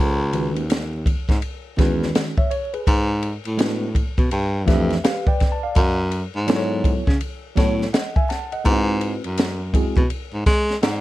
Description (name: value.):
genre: hip hop, jazz-hop.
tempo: 83 BPM.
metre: 4/4.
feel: swing 64% on 16ths.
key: C# minor.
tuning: A4 = 444 Hz.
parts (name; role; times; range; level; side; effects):
tine electric piano; accompaniment; 0.0-11.0 s; D#3 to A5; -24 LUFS; equal; overdrive, fast stereo tremolo.
warm baritone saxophone; bass; 0.0-11.0 s; C#2 to G#3; -22 LUFS; equal; none.
compact cocktail drum kit; drums; 0.3-11.0 s; hi-hat, kick drum, ride cymbal, snare drum; -20 LUFS; equal; none.
room: light reverb.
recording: dark, warm production, vinyl crackle.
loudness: -18 LUFS.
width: side -16 dB against mid.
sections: 0.0-11.0 A section.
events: tine electric piano fill 4.3-5.8.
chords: 0.0 C#m9; 2.9 G#m7b5; 4.3 G9; 5.8 F#m9; 8.7 G#7alt.